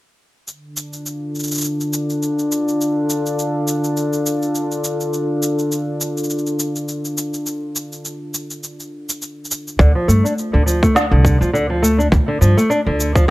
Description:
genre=folktronica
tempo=103 BPM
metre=4/4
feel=swing 56% on 16ths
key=D minor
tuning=A4 = 441 Hz
part: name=warm analog pad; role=sustained chords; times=0.5-9.8 s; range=D3 to A4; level=-21 LUFS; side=left 1 dB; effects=chorus
part: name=electronic shaker and snare drum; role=drums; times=0.5-13.3 s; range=none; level=-23 LUFS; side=right 1 dB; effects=none
part: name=nylon-string guitar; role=arpeggios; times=9.8-13.3 s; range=D3 to D4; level=-17 LUFS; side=equal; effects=low-pass filter, digital delay
part: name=upright bass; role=bass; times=9.8-13.3 s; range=C2 to G2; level=-15 LUFS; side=equal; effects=none
part: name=electronic kick drum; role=drums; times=9.8-13.3 s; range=none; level=-15 LUFS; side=equal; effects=none
room=light reverb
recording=none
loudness=-16 LUFS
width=side -18 dB against mid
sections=0.5-9.8 A section; 9.8-13.3 B section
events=filter sweep on nylon-string guitar 9.8-13.3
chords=0.5 Dm

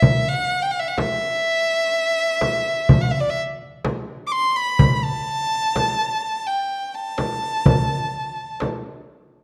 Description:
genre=Arabic maqam ensemble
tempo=126 BPM (eighths)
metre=10/8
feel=straight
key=E maqam bayati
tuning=A4 = 440 Hz
part: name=rich violin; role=melody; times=0.0-8.6 s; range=D5 to D6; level=-24 LUFS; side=equal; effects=none
part: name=darbuka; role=percussion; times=0.0-8.8 s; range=none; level=-22 LUFS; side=equal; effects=none
part: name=frame drum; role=percussion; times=0.0-8.8 s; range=none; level=-25 LUFS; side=equal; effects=none
room=moderate recital hall reverb, RT60 1.5 s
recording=dark, warm production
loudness=-21 LUFS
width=mono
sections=0.0-9.4 A section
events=none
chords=none

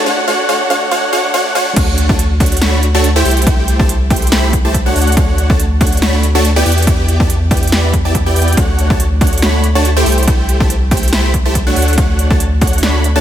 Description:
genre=future bass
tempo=141 BPM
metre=4/4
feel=swing 55% on 16ths, half-time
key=D major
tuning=A4 = 440 Hz
part: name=supersaw stab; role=riff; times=0.0-13.2 s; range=A3 to B5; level=-15 LUFS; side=equal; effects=sidechain pumping, digital delay
part: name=saturated sub bass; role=bass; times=0.0-13.2 s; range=C2 to E2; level=-14 LUFS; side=equal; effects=sidechain pumping, high-pass filter
part: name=big-room dance drum kit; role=drums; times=1.8-13.1 s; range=crash cymbal, hi-hat, snare drum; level=-19 LUFS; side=right 1 dB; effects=overdrive
part: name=electronic kick drum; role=drums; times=1.8-12.7 s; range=none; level=-14 LUFS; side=equal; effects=overdrive
room=light reverb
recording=high-pass filter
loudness=-10 LUFS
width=side -11 dB against mid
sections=0.0-1.8 A section; 1.8-13.2 B section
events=build-up 0.0-1.8; break 0.1-1.8; drop 1.8-13.2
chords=0.0 E9sus4 (rootless); 1.8 Dmaj7; 3.3 Am7/C; 5.0 Dmaj7; 6.7 Em7; 8.6 Dmaj7; 10.1 Am7/C; 11.8 Dmaj7

